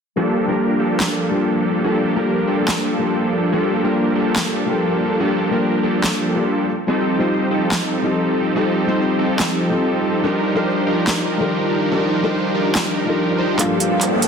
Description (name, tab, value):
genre	future bass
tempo	143 BPM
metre	4/4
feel	half-time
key	G minor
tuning	A4 = 439 Hz
part	felt-muted upright piano	accompaniment	0.2-14.3 s	Eb3 to D5	-21 LUFS	left 3 dB	low-pass filter, dub echo
part	supersaw chords	riff	0.2-14.3 s	F3 to C5	-19 LUFS	right 2 dB	low-pass filter, dub echo
part	big-room dance drum kit	drums	1.0-14.3 s	handclaps, hi-hat, snare drum	-22 LUFS	right 1 dB	high-pass filter on snare, high-pass filter on hats
part	soft octave-layered synth lead	melody	13.6-14.3 s	F5 to A5	-23 LUFS	equal	chorus, tremolo
part	rich studio string section	sustained chords	13.6-14.3 s	G2 to A4	-28 LUFS	equal	none
part	riser	sound effects	13.8-14.3 s	none	-23 LUFS	right 2 dB	none
room	moderate digital room reverb, RT60 1.1 s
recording	dense, heavily limited modern master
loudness	-16 LUFS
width	side -6 dB against mid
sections	0.2-13.6 A section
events	filter sweep on felt piano 0.2-13.6; drum fill 13.6-14.3; riser 13.8-14.3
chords	0.2 Gm9; 6.7 F9; 10.2 Ebmaj9; 13.6 Gm9